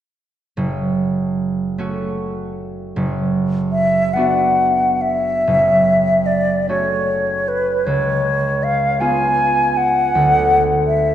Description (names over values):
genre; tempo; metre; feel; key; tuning
classical, romantic duo for flute and harp; 44-54 BPM (dotted quarters); 6/8; rubato; F# minor; A4 = 441 Hz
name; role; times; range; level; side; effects
concert harp; accompaniment; 0.6-11.1 s; F#1 to G#4; -20 LUFS; right 2 dB; none
mellow silver concert flute; melody; 3.7-11.1 s; B4 to G#5; -15 LUFS; left 1 dB; none
room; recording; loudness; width
wet concert hall reverb, RT60 2.2 s; dark, warm production; -15 LUFS; side -10 dB against mid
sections
0.6-5.5 A section; 5.5-11.1 B section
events
none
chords
0.6 F#m; 2.9 Bm/F#; 5.5 F#m; 7.8 C#7; 10.1 D6